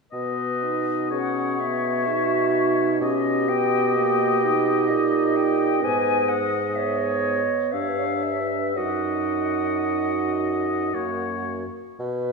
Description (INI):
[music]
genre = classical, slow romantic movement for wind quintet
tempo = 55-66 BPM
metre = 3/4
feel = rubato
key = B major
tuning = A4 = 441 Hz
[part]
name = warm oboe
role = second line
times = 0.1-11.7 s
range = C#5 to E5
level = -28 LUFS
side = left 4 dB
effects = none
[part]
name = dark clarinet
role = accompaniment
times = 0.1-12.3 s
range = F#4 to C#5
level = -26 LUFS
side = right 5 dB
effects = none
[part]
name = mellow French horn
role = accompaniment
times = 0.1-11.6 s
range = A#3 to D#4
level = -28 LUFS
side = right 1 dB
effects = none
[part]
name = mellow bassoon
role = bass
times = 0.1-12.3 s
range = F#2 to B2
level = -28 LUFS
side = equal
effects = none
[part]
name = silver concert flute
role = melody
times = 1.1-11.4 s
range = D#5 to G#5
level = -29 LUFS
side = left 4 dB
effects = none
[sound]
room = wet scoring stage reverb, RT60 1.8 s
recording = studio ambience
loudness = -21 LUFS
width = side -3 dB against mid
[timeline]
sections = 0.1-12.3 A section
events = none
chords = 0.1 B; 3.0 D#7/B; 5.8 G#m; 7.7 G5; 8.8 D#m/F#; 10.9 F#